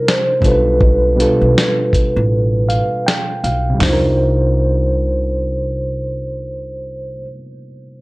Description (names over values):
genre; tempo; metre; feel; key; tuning
lo-fi hip hop; 80 BPM; 4/4; swing 61% on 16ths; C dorian; A4 = 440 Hz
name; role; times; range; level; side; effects
vibraphone with soft mallets; melody; 0.0-7.3 s; B4 to C5; -19 LUFS; right 1 dB; low-pass filter
overdriven reed electric piano; accompaniment; 0.0-8.0 s; B2 to G5; -20 LUFS; equal; low-pass filter
dusty soul sampler-style drum kit; drums; 0.1-4.0 s; hi-hat, kick drum, snare drum, toms; -17 LUFS; equal; vintage 12-bit sampler grit
upright bass; bass; 0.4-7.2 s; A1 to C2; -18 LUFS; equal; none
room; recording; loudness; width
light reverb; dry, gritty hardware recording; -13 LUFS; side -22 dB against mid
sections
0.0-3.8 A section; 3.8-6.8 B section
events
reed electric piano fill 2.3-3.8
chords
0.4 G7/B; 3.8 Cm11